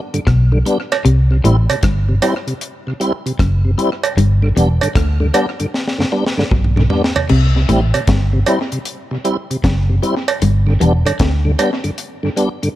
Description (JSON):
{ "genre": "roots reggae", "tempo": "77 BPM", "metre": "4/4", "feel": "swing 65% on 16ths", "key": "unclear", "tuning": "A4 = 440 Hz", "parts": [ { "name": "tonewheel organ", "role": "accompaniment", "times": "0.1-12.7 s", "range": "G2 to E4", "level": "-19 LUFS", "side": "equal", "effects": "overdrive, chorus vibrato, slow rotary speaker" }, { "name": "deep reggae drum kit", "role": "drums", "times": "0.1-12.8 s", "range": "crash cymbal, hi-hat, kick drum, rim click, snare drum, toms", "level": "-20 LUFS", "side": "equal", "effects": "tape echo" }, { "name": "electric guitar at the edge of break-up", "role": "riff", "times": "0.3-11.4 s", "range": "E2 to D3", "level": "-19 LUFS", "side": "left 3 dB", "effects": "wide subtle chorus" }, { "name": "vintage muted fingered electric bass", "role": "bass", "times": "0.3-11.5 s", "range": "E1 to D2", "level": "-14 LUFS", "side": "equal", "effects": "none" }, { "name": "cowbell", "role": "percussion", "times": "0.9-11.8 s", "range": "none", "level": "-21 LUFS", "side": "right 6 dB", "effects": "none" } ], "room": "light reverb, small room ambience", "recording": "none", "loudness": "-13 LUFS", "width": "side -14 dB against mid", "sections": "0.0-7.3 A section; 7.3-12.8 B section", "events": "drum fill 5.7-7.3", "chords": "0.0 G; 1.1 C; 4.2 G; 7.3 C; 10.4 G", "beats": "0.27 | 1.05 1.83 2.61 3.39 | 4.17 4.95 5.74 6.52 | 7.30 8.08 8.86 9.64 | 10.42 11.20 11.98" }